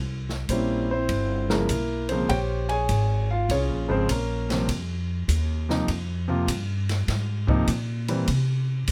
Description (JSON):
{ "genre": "jazz piano trio", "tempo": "100 BPM", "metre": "4/4", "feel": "swing 68% on 8ths", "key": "F harmonic minor", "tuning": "A4 = 440 Hz", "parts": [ { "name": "upright bass", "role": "bass", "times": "0.0-8.9 s", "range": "G1 to C3", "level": "-28 LUFS", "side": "equal", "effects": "none" }, { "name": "open jazz drum kit", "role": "drums", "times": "0.3-8.9 s", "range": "hi-hat, kick drum, ride cymbal, snare drum", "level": "-34 LUFS", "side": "equal", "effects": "none" }, { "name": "warm concert grand piano", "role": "melody", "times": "0.5-8.3 s", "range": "C3 to Ab5", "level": "-28 LUFS", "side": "equal", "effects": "none" } ], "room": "little or no reverb", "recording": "close, detailed microphones", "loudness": "-25 LUFS", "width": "mono", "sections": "0.0-8.9 A section", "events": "none", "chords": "0.0 C7; 2.3 Bbm9; 4.7 Fm7; 8.3 N.C." }